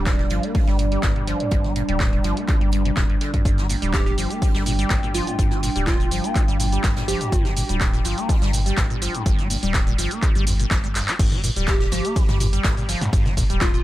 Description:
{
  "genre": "acid house",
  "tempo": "124 BPM",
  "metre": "4/4",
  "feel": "straight",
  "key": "G minor",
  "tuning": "A4 = 440 Hz",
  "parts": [
    { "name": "dark analog pad", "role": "sustained chords", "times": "0.0-11.2 s", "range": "G3 to G5", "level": "-29 LUFS", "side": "right 1 dB", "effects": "chorus, phaser, sidechain pumping" },
    { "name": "liquid acid bass", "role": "riff", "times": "0.0-13.8 s", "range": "F2 to Bb3", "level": "-27 LUFS", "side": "equal", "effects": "phaser, wide subtle chorus, dub echo" },
    { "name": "warm sub bass", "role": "bass", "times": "0.0-13.8 s", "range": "D1 to G1", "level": "-25 LUFS", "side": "equal", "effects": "sidechain pumping" },
    { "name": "electronic kick drum", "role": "drums", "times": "0.1-13.7 s", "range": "none", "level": "-21 LUFS", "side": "equal", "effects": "none" },
    { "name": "jazz brush drum kit", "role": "drums", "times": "0.1-13.8 s", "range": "hi-hat, snare drum", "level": "-37 LUFS", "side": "right 2 dB", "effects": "high-pass filter on hats, high-pass filter on snare, high-pass filter on room, dub echo" },
    { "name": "punchy analog drum machine", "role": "drums", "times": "0.1-13.8 s", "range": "crash cymbal, handclaps, hi-hat, ride cymbal, shaker, snare drum, toms", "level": "-27 LUFS", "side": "equal", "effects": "none" },
    { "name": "plucky unison lead", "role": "melody", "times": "3.9-7.4, 11.7-13.8 s", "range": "F4 to G4", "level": "-30 LUFS", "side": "right 1 dB", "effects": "phaser, tape echo" }
  ],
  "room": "light reverb, digital ambience",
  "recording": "echo-heavy mix",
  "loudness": "-18 LUFS",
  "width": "side -15 dB against mid",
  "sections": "0.0-11.2 A section; 11.2-13.8 B section",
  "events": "drum fill 11.0; drop 11.2-13.8",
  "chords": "0.0 G5"
}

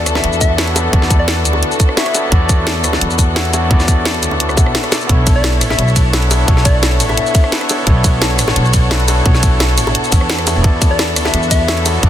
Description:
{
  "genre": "liquid drum and bass",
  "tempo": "173 BPM",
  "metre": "4/4",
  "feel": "straight",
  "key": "unclear",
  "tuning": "A4 = 440 Hz",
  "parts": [
    { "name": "overdriven tine electric piano", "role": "accompaniment", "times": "0.0-12.1 s", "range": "B3 to F#5", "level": "-20 LUFS", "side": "equal", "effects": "ping-pong delay" },
    { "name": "dark studio string section", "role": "sustained chords", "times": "0.0-12.1 s", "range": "B3 to C#5", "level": "-21 LUFS", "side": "left 2 dB", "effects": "sidechain pumping" },
    { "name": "upright bass", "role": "bass", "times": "0.0-12.1 s", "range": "F#1 to E2", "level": "-16 LUFS", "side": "equal", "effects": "none" },
    { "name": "garage drum kit", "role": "drums", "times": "0.1-12.1 s", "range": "hi-hat, ride cymbal, rim click, shaker, snare drum", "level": "-18 LUFS", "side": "equal", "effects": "soft clipping on snare" },
    { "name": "soft struck synth lead", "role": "melody", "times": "0.2-2.5, 5.4-7.6, 10.9-11.9 s", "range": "D5 to E5", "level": "-22 LUFS", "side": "left 3 dB", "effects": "chorus, dub echo" },
    { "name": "bongos", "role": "percussion", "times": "0.2-11.9 s", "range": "none", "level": "-25 LUFS", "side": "equal", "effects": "none" },
    { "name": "electronic kick drum", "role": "drums", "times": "0.4-12.1 s", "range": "none", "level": "-12 LUFS", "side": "equal", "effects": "none" }
  ],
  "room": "light reverb, digital ambience",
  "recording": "dense, heavily limited modern master",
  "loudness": "-11 LUFS",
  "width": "side -11 dB against mid",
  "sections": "0.0-12.1 A section",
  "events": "break 4.7-5.1; drum fill 4.9",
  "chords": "0.0 E9sus4; 5.1 Bm11; 10.6 E9sus4"
}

